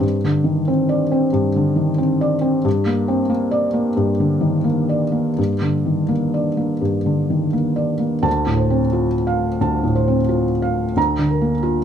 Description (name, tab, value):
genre	neoclassical minimalist piano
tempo	82-93 BPM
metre	4/4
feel	rubato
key	unclear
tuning	A4 = 444 Hz
part	felt-muted upright piano	solo	0.0-11.8 s	D2 to Bb5	-16 LUFS	equal	none
room	light reverb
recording	none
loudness	-16 LUFS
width	side -8 dB against mid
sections	0.0-8.3 A section; 8.3-11.8 B section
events	none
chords	0.0 Gsus4; 2.7 Bb/G; 8.3 Dm7; 11.0 Bb/D